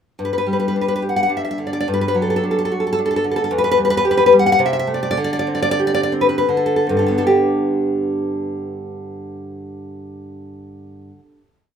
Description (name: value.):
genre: romantic piece for solo classical guitar.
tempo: 74-114 BPM.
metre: 3/4.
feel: rubato.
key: G major.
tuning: A4 = 442 Hz.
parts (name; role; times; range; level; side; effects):
nylon-string guitar; solo; 0.2-11.5 s; E2 to F#5; -16 LUFS; equal; none.
room: light reverb.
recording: minimal, uncompressed stereo recording.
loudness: -15 LUFS.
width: side -8 dB against mid.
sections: 0.2-7.3 A section; 7.3-11.7 final chord.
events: slowing down 2.7-7.3.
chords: 0.2 G5; 1.9 D/G; 3.5 Em; 4.6 Am/C; 5.2 D7sus4; 6.5 Amadd11/D; 7.3 G.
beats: | 0.19 0.75 1.30 | 1.86 2.43 2.98 | 3.51 4.05 4.61 | 5.19 5.80 6.48 | 7.26 8.01 8.77 | 9.52 10.25 10.98.